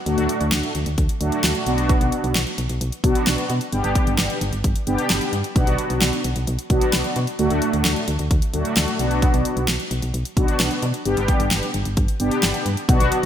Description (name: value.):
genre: synth-pop.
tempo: 131 BPM.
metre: 4/4.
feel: straight.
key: B minor.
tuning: A4 = 445 Hz.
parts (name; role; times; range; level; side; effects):
mellow synth brass; accompaniment; 0.1-13.3 s; A3 to G4; -22 LUFS; equal; chorus.
solid FM bass; bass; 0.1-13.3 s; G1 to B2; -24 LUFS; equal; none.
pop drum kit; drums; 0.1-13.3 s; hi-hat, kick drum, snare drum; -21 LUFS; equal; gated reverb.
room: moderate lush hall reverb, RT60 1.9 s, digital ambience.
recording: bright 1980s-style digital production.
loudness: -18 LUFS.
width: side -10 dB against mid.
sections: 0.0-12.9 A section.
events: none.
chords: 0.1 D; 1.7 Bm; 3.7 G; 5.6 Bm; 7.4 D; 9.0 Bm; 11.1 G.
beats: | 0.06 0.52 0.98 1.44 | 1.90 2.35 2.81 3.27 | 3.73 4.18 4.64 5.10 | 5.56 6.02 6.47 6.93 | 7.39 7.85 8.31 8.77 | 9.22 9.68 10.14 10.60 | 11.06 11.51 11.97 12.43 | 12.89.